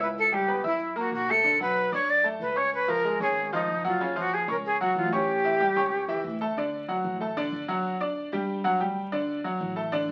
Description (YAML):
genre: latin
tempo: 188 BPM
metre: 4/4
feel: straight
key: D major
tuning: A4 = 440 Hz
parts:
  - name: breathy bright jazz flute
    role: melody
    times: 0.0-6.2 s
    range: Eb4 to D5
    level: -27 LUFS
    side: equal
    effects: none
  - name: bright concert grand piano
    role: accompaniment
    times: 0.0-10.1 s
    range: C#3 to E6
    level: -31 LUFS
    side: equal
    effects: none
  - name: upright bass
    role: bass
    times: 0.0-10.1 s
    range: F#1 to G2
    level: -42 LUFS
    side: equal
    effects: none
room: wet studio reverb, RT60 0.6 s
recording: very old 78 rpm record, vinyl crackle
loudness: -27 LUFS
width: mono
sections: 0.0-6.6 A section; 6.6-10.1 B section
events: none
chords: 0.2 C#m7b5; 0.8 F#7; 1.4 Bm7; 2.7 C#; 4.0 F#5; 5.3 A7; 6.6 D; 7.8 G5; 9.1 D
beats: | 0.16 0.48 0.80 1.12 | 1.44 1.76 2.08 2.40 | 2.72 3.04 3.36 3.68 | 4.00 4.32 4.64 4.96 | 5.28 5.60 5.92 6.24 | 6.56 6.88 7.20 7.52 | 7.84 8.16 8.48 8.80 | 9.12 9.44 9.77 10.09